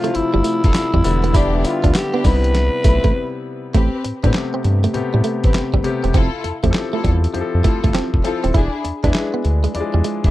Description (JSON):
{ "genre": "R&B, new jack swing", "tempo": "100 BPM", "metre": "4/4", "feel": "swing 65% on 16ths", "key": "A minor", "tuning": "A4 = 440 Hz", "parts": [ { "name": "growling tenor saxophone", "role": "melody", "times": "0.0-3.5 s", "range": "D4 to B4", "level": "-22 LUFS", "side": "equal", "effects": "none" }, { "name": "warm concert grand piano", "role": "accompaniment", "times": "0.0-10.3 s", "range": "C3 to E5", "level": "-23 LUFS", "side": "left 4 dB", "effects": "none" }, { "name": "direct-recorded clean electric guitar", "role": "riff", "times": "0.0-10.2 s", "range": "G3 to E4", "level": "-23 LUFS", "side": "right 6 dB", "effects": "wide subtle chorus" }, { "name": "dusty soul sampler-style drum kit", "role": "drums", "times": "0.0-10.3 s", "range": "handclaps, hi-hat, kick drum, snare drum, tambourine", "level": "-18 LUFS", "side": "equal", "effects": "none" }, { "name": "round analog bass", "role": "bass", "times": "0.2-10.3 s", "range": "D#1 to A2", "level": "-18 LUFS", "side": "equal", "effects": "none" }, { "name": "warm studio string section", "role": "stabs", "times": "0.6-10.3 s", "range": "C4 to B4", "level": "-27 LUFS", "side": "left 4 dB", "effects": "tape echo" } ], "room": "little or no reverb", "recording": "dark, warm production", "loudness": "-15 LUFS", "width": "side -16 dB against mid", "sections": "0.0-3.7 A section; 3.7-10.3 B section", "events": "break 3.1-3.7", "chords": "0.0 Fmaj7; 1.0 Em7; 2.2 Cmaj7; 3.7 Am9; 6.1 Fmaj7; 8.5 E7" }